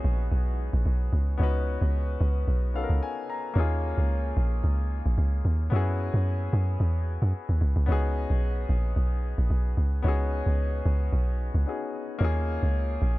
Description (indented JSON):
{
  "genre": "amapiano",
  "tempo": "111 BPM",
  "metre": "4/4",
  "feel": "swing 55% on 16ths",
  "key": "Db mixolydian",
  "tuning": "A4 = 439 Hz",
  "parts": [
    { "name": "warm grand piano", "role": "accompaniment", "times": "0.0-13.2 s", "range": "Bb3 to Bb5", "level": "-33 LUFS", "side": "left 4 dB", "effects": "none" },
    { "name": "deep log drum bass", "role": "bass", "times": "0.0-13.2 s", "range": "Bb1 to Gb2", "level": "-24 LUFS", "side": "equal", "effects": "none" }
  ],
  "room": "small room reverb",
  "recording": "none",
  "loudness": "-24 LUFS",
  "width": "side -18 dB against mid",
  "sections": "0.0-13.2 A section",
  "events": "grand piano fill 2.5-3.6",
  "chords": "0.0 Db9sus4; 3.6 Eb9sus4; 5.7 Gb9sus4; 7.9 Db9sus4; 12.2 Eb9sus4",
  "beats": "0.32 0.86 | 1.40 1.94 2.48 3.02 | 3.56 4.10 4.64 5.18 | 5.72 6.26 6.80 7.34 | 7.88 8.42 8.96 9.50 | 10.04 10.59 11.13 11.67 | 12.21 12.75"
}